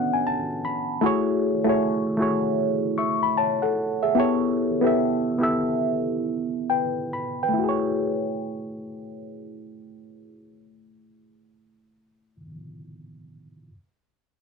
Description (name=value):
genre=R&B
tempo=66-78 BPM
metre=4/4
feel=swing 64% on 16ths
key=F# minor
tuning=A4 = 440 Hz
part: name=reed electric piano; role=solo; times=0.0-13.7 s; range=A3 to C#6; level=-22 LUFS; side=equal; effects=phaser
room=light reverb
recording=dry, close 1970s-style studio recording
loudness=-21 LUFS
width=side -5 dB against mid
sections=0.0-7.6 A section; 7.6-11.2 B section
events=reed electric piano fill 0.0-1.0; slowing down 1.0-7.6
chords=0.0 Bm9; 1.0 F#m9/A; 4.2 A9; 7.6 F#m7